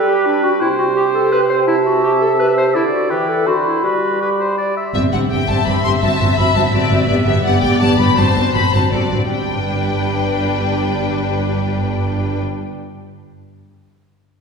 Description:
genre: quick classical-period movement for symphony orchestra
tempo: 152-170 BPM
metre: 3/4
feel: straight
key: G major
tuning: A4 = 440 Hz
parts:
  - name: clear oboe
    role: second line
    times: 0.0-4.9 s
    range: B4 to E5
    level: -22 LUFS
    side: right 2 dB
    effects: none
  - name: mellow hollow silver concert flute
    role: second line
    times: 0.0-4.8 s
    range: G5 to B5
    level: -22 LUFS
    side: left 4 dB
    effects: none
  - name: warm clarinet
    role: second line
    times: 0.0-4.6 s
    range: D4 to C5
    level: -18 LUFS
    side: equal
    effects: none
  - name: dark bassoon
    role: accompaniment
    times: 0.0-4.7 s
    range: C3 to G3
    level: -18 LUFS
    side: right 3 dB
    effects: none
  - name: rich studio violin section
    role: melody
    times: 4.9-12.4 s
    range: D5 to C6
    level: -21 LUFS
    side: left 6 dB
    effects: none
  - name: rich studio viola section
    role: accompaniment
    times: 5.0-12.4 s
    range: G3 to G4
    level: -20 LUFS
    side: equal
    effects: none
  - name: rich symphonic double bass section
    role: bass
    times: 5.0-12.4 s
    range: G1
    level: -21 LUFS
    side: right 2 dB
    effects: none
  - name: warm studio cello section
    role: bass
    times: 5.0-12.4 s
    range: G2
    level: -21 LUFS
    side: right 1 dB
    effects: none
  - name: rich studio violin section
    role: second line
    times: 5.3-12.4 s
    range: D4 to E5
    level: -22 LUFS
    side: left 2 dB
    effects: none
room: wet concert hall reverb, RT60 2.0 s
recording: heard from further back in the room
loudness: -14 LUFS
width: side -5 dB against mid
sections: 0.0-4.9 A section; 4.9-9.3 B section; 9.3-11.6 C section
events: slowing down 6.6-9.3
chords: 0.0 G; 0.6 C5; 2.7 D; 3.1 Em; 3.5 D13; 3.8 G; 4.9 C/G; 6.0 D7/G; 7.1 G; 8.2 D7/G; 9.3 G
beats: 0.25 | 0.61 0.96 1.32 | 1.67 2.03 2.38 | 2.74 3.10 3.46 | 3.83 4.21 4.58 | 4.95 5.31 5.67 | 6.03 6.38 6.73 | 7.08 7.44 7.80 | 8.17 8.54 8.92 | 9.31 9.70 10.08 | 10.46 10.85 11.24

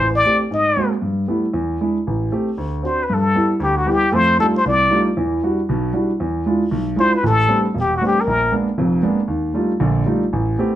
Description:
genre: jazz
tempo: 232 BPM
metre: 4/4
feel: swing 58% on 8ths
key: G major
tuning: A4 = 440 Hz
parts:
  - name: trumpet with plunger mute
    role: melody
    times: 0.0-8.5 s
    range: F#4 to Eb5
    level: -16 LUFS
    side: left 2 dB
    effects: none
  - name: warm concert grand piano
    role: accompaniment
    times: 0.0-10.7 s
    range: E1 to G4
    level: -18 LUFS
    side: right 1 dB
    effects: none
room: moderate studio reverb, RT60 0.7 s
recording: none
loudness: -16 LUFS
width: side -12 dB against mid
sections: 0.0-3.1 A section; 3.1-10.8 B section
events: none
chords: 0.0 Am7; 0.5 Ab9; 1.0 G69; 1.5 E7; 2.1 Am7; 2.6 D7; 3.1 G6; 4.1 F13; 5.2 Em9; 6.2 E7b9; 7.2 Am11; 8.3 Bb7b9; 9.3 Ebmaj9#11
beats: 0.24 0.50 0.76 | 1.02 1.28 1.54 1.80 | 2.06 2.32 2.58 2.84 | 3.10 3.35 3.61 3.87 | 4.13 4.39 4.65 4.91 | 5.16 5.42 5.68 5.94 | 6.20 6.45 6.71 6.97 | 7.23 7.49 7.74 8.00 | 8.26 8.52 8.78 9.03 | 9.29 9.55 9.81 10.07 | 10.32 10.58

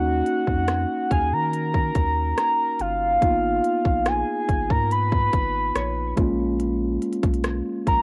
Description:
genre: contemporary R&B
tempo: 71 BPM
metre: 4/4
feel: straight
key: G# dorian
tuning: A4 = 440 Hz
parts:
  - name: soft octave-layered synth lead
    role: melody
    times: 0.0-8.0 s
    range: E#5 to B5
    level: -25 LUFS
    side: equal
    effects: chorus, phaser, cassette tape, tape echo
  - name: mellow tine electric piano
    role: accompaniment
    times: 0.0-8.0 s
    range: G#3 to F#4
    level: -29 LUFS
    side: equal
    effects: cassette tape
  - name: round analog bass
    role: bass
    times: 0.0-8.0 s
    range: G1 to D#3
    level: -30 LUFS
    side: equal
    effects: none
  - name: trap drum kit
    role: drums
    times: 0.3-8.0 s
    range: hi-hat, kick drum, rim click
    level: -26 LUFS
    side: equal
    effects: overdrive, cassette tape
  - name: glassy wavetable pluck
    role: texture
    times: 1.1-6.6 s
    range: C#5 to E#5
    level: -41 LUFS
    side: equal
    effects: chorus, cassette tape, tape echo
room: little or no reverb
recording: home recording on cassette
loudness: -23 LUFS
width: mono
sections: 0.0-8.0 A section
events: none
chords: 0.0 D#m9; 3.2 G#m69; 6.2 A#m7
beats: 0.68 1.53 2.37 | 3.22 4.06 4.91 5.75 | 6.60 7.45

